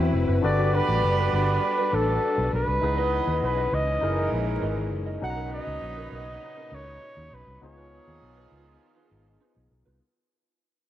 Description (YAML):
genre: pop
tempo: 100 BPM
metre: 4/4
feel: straight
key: unclear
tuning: A4 = 441 Hz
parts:
  - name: warm horn section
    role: second line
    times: 0.0-9.7 s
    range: E3 to D#5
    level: -33 LUFS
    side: right 7 dB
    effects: cassette tape, analog delay
  - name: barky tine electric piano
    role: accompaniment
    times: 0.0-10.0 s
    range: B3 to A#5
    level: -30 LUFS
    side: left 6 dB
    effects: overdrive, wide subtle chorus, cassette tape
  - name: clear studio string section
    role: sustained chords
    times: 0.0-10.0 s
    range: A#2 to B4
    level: -37 LUFS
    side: equal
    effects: cassette tape
  - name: vintage muted fingered electric bass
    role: bass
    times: 0.0-10.0 s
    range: E#1 to E2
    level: -27 LUFS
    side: equal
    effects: none
  - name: mellow electric guitar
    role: riff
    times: 0.1-10.0 s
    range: C4 to D#5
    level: -37 LUFS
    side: right 7 dB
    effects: ensemble chorus, cassette tape
  - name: warm flugelhorn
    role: melody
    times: 0.4-8.5 s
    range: A4 to F#5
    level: -28 LUFS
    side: right 1 dB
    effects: cassette tape
room: light reverb, small room ambience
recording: home recording on cassette, vinyl crackle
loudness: -22 LUFS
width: side -12 dB against mid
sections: 0.0-10.0 A section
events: fade-out 0.0-10.0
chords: 0.4 Gmaj7; 2.8 C#m9; 4.0 F#13; 5.2 Bmaj9; 7.6 C#9